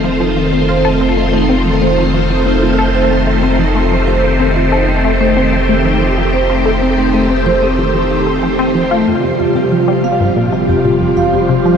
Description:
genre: ambient, sequencer-driven space music.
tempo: 93 BPM.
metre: 4/4.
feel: straight.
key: unclear.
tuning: A4 = 440 Hz.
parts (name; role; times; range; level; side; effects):
phased string machine; sustained chords; 0.0-11.8 s; C3 to C5; -14 LUFS; left 1 dB; ensemble chorus, phaser.
vibraphone with medium mallets; arpeggios; 0.0-11.7 s; A3 to F5; -17 LUFS; right 3 dB; auto-pan, tape echo.
tight sequenced synth; riff; 0.0-11.7 s; F2 to A4; -18 LUFS; left 2 dB; chorus, tape echo.
warm sub bass; bass; 0.0-11.8 s; F1; -19 LUFS; equal; none.
bubbling stepped-filter texture; texture; 9.1-11.8 s; none; barely audible; none; none.
room: moderate shimmer reverb, RT60 6.9 s.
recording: none.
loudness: -10 LUFS.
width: side -7 dB against mid.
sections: 0.0-9.1 A section; 9.1-11.8 B section.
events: filter sweep on synth arpeggio sound 0.0-9.1.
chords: 0.0 F7; 9.1 Fsus2.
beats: 0.04 0.69 | 1.33 1.98 2.62 3.27 | 3.91 4.56 5.21 5.85 | 6.50 7.14 7.79 8.43 | 9.08 9.72 10.37 11.01 | 11.66.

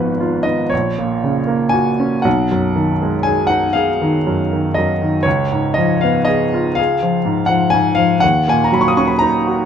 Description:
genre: classical, romantic nocturne for solo piano.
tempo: 38-42 BPM (dotted quarters).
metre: 6/8.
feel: rubato.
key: unclear.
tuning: A4 = 440 Hz.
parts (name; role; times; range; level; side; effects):
clear baby grand piano; solo; 0.0-9.7 s; Ab1 to D#6; -14 LUFS; equal; none.
room: light reverb.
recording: dark, warm production, nothing above 10.5 kHz.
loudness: -14 LUFS.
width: side -8 dB against mid.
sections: 0.0-9.7 A section.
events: none.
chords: 0.0 Fdim/Ab; 0.7 F#/A#; 2.3 G#m7/B; 5.3 C#7; 8.2 D#m7.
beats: 0.72 | 2.26 3.75 | 5.25 6.78 | 8.23.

